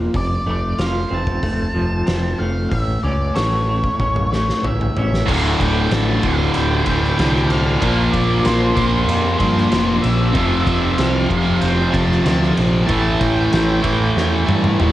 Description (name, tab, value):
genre	quiet-loud alternative rock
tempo	94 BPM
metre	4/4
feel	straight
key	D minor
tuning	A4 = 440 Hz
part	electric guitar through a small old amp	arpeggios	0.0-5.3 s	F2 to A4	-23 LUFS	equal	tremolo
part	growling picked electric bass	bass	0.0-14.9 s	D1 to G2	-21 LUFS	equal	overdrive
part	oversized low-tuned drum kit	drums	0.1-14.9 s	crash cymbal, hi-hat, kick drum, ride cymbal, snare drum, toms	-23 LUFS	equal	cassette tape
part	octave-fuzz lead guitar	melody	0.2-14.4 s	C5 to A5	-25 LUFS	equal	distortion, cassette tape
part	overdriven tonewheel organ	sustained chords	5.3-14.9 s	none	barely audible	none	none
part	overdriven semi-hollow guitar	riff	5.3-14.9 s	D2 to Bb3	-20 LUFS	right 5 dB	none
part	thick fuzz guitar	riff	5.3-14.9 s	D2 to Bb3	-21 LUFS	left 5 dB	distortion
part	tight distorted guitar	riff	5.3-14.9 s	D2 to Bb3	-22 LUFS	equal	distortion
room	little or no reverb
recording	home recording on cassette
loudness	-15 LUFS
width	side -14 dB against mid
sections	0.0-5.3 A section; 5.3-14.9 B section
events	drum fill 4.0-5.3, 14.2-14.9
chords	0.1 F; 2.7 A; 5.3 Dm7; 7.8 Bbsus2; 10.3 F6; 12.9 A7